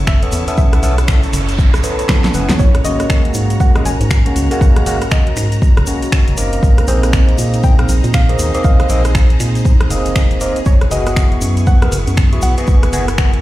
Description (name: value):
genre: deep house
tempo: 119 BPM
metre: 4/4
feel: swing 61% on 16ths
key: unclear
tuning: A4 = 441 Hz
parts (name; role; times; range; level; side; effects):
- soft round pluck; melody; 0.0-13.4 s; B#4 to G#5; -26 LUFS; equal; chorus, ping-pong delay
- dark analog pad; sustained chords; 0.0-13.4 s; B3 to A#4; -26 LUFS; right 3 dB; chorus, vintage 12-bit sampler grit, sidechain pumping
- organ-like FM bass; bass; 0.0-13.4 s; E#1 to A#2; -16 LUFS; equal; sidechain pumping
- clear symphonic string section; texture; 0.0-13.4 s; B3 to A#5; -30 LUFS; left 1 dB; sidechain pumping
- soft string machine; texture; 0.0-13.4 s; A#5 to C#6; -33 LUFS; equal; phaser, ensemble chorus
- deep house drum kit; drums; 0.1-13.4 s; finger snaps, hi-hat, rim click, snare drum; -22 LUFS; equal; none
- electronic kick drum; drums; 0.1-13.3 s; none; -11 LUFS; equal; none
- tube shaker; percussion; 0.1-13.3 s; none; -30 LUFS; left 3 dB; none
- overdriven tine electric piano; stabs; 0.2-13.0 s; G#3 to B4; -21 LUFS; equal; phaser, sidechain pumping, ping-pong delay
- noise sweep; sound effects; 1.0-2.6 s; none; -28 LUFS; right 4 dB; none
room: digital ambience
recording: played on a big sound system in a bare room, large studio reverb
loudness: -11 LUFS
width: side -16 dB against mid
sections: 0.0-13.4 A section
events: noise sweep 1.0-2.6; drum fill 2.1-2.6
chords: 0.0 B9sus4; 2.6 G#9sus4; 6.6 A#9sus4; 10.7 F#9sus4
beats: 0.07 | 0.58 1.08 1.59 2.09 | 2.59 3.10 3.60 4.11 | 4.61 5.12 5.62 6.12 | 6.63 7.13 7.64 8.14 | 8.64 9.15 9.65 10.16 | 10.66 11.17 11.67 12.17 | 12.68 13.18